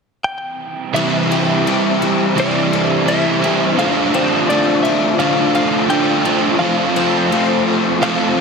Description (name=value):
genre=rock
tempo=85 BPM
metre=4/4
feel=straight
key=C major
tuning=A4 = 441 Hz
part: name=direct-recorded clean electric guitar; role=melody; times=0.2-8.4 s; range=C5 to G5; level=-22 LUFS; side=left 1 dB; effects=slapback echo
part: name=glassy FM pad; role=sustained chords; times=1.6-8.4 s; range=F4 to A5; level=-25 LUFS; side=left 4 dB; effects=ensemble chorus, built-in reverb
part: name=overdriven electric guitar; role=riff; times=0.9-8.4 s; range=C3 to F4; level=-17 LUFS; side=right 10 dB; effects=reverse reverb
part: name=overdriven semi-hollow guitar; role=riff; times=0.9-8.4 s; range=C3 to F4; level=-18 LUFS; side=left 9 dB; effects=ensemble chorus
part: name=picked twelve-string acoustic guitar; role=arpeggios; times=1.0-8.4 s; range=E3 to G4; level=-24 LUFS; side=left 8 dB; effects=analog chorus, slapback echo
room=moderate huge ambient reverb, RT60 6.7 s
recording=none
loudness=-13 LUFS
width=side -5 dB against mid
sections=1.0-8.4 A section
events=none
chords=0.0 N.C.; 1.0 C6; 3.8 Dm7; 6.6 F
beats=0.24 | 0.95 1.66 2.37 3.07 | 3.78 4.49 5.20 5.90 | 6.61 7.32 8.02